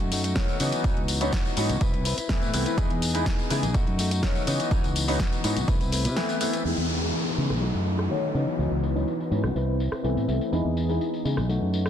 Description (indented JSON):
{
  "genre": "filtered disco house",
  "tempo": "124 BPM",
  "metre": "4/4",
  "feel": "straight",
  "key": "E major",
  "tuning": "A4 = 440 Hz",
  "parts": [
    { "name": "direct-recorded clean electric guitar", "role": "riff", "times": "0.0-11.9 s", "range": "E3 to B4", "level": "-32 LUFS", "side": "left 4 dB", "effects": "sidechain pumping, low-pass filter" },
    { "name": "fingered electric bass", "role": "bass", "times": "0.0-11.9 s", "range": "B1 to C#3", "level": "-27 LUFS", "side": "right 1 dB", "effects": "sidechain pumping, low-pass filter" },
    { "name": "house drum kit", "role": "drums", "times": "0.0-11.9 s", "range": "hi-hat, rim click, snare drum, tambourine", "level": "-32 LUFS", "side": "left 1 dB", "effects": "sidechain pumping on hats, low-pass filter on hats, sidechain pumping on perc, low-pass filter on perc, low-pass filter on snare" },
    { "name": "tambourine", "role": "percussion", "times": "0.1-11.9 s", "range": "none", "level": "-47 LUFS", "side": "right 4 dB", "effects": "none" },
    { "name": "bright concert grand piano", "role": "accompaniment", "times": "0.4-11.4 s", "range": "D#3 to E4", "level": "-30 LUFS", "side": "left 1 dB", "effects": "phaser, vintage 12-bit sampler grit, sidechain pumping, low-pass filter" },
    { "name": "electronic kick drum", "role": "drums", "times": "0.4-5.8 s", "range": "none", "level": "-26 LUFS", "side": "equal", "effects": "none" },
    { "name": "string machine, full ensemble", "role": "sustained chords", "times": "6.6-11.9 s", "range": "E3 to A5", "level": "-33 LUFS", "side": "equal", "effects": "ensemble chorus, sidechain pumping, low-pass filter" },
    { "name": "downlifter", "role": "sound effects", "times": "6.6-10.5 s", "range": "none", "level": "-33 LUFS", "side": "left 1 dB", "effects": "none" }
  ],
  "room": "light reverb, digital ambience",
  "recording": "dense, heavily limited modern master",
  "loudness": "-23 LUFS",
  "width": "side -9 dB against mid",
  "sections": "0.0-6.7 A section; 6.7-11.9 B section",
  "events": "filter sweep 6.7-11.9",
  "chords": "0.0 B7; 0.6 C#m11; 1.8 Amadd9/C; 2.8 Emaj7; 3.7 B7; 4.5 C#m11; 5.7 Amadd9/C; 6.7 Emaj7; 7.6 B7; 8.3 C#m11; 9.6 Amadd9/C; 10.5 Emaj7",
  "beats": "0.36 | 0.84 1.33 1.81 2.30 | 2.78 3.26 3.75 4.23 | 4.72 5.20 5.68 6.17 | 6.65 7.13 7.62 8.10 | 8.59 9.07 9.55 10.04 | 10.52 11.01 11.49"
}